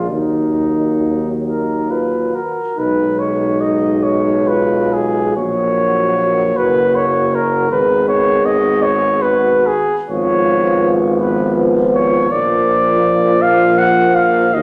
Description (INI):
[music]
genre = classical, hymn-like piece for brass band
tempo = 44-55 BPM (dotted quarters)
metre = 6/8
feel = rubato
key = unclear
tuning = A4 = 441 Hz
[part]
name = warm flugelhorn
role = melody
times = 0.0-14.6 s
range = Eb4 to Gb5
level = -18 LUFS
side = equal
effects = none
[part]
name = mellow French horn section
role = second line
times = 0.0-14.6 s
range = Eb4 to Ab4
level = -22 LUFS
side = equal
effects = none
[part]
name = mellow trombone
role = accompaniment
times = 0.0-14.6 s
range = Eb3 to Gb3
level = -26 LUFS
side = equal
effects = none
[part]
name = clear tuba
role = bass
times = 0.0-14.6 s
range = Gb1 to Eb2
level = -24 LUFS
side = equal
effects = none
[part]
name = warm euphonium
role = accompaniment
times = 0.1-14.6 s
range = G#3 to Cb4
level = -24 LUFS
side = equal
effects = none
[sound]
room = wet recital hall reverb, RT60 1.5 s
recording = none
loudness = -15 LUFS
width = mono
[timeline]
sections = 0.0-2.8 A section; 2.8-14.6 B section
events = none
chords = 0.1 Ebm; 2.8 B6; 5.4 Gb/Bb; 7.7 Abm; 10.1 Fdim/Ab; 12.3 Bb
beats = | 0.10 1.46 | 2.78 4.04 | 5.37 6.57 | 7.72 8.84 | 10.09 11.21 | 12.31 13.42 | 14.54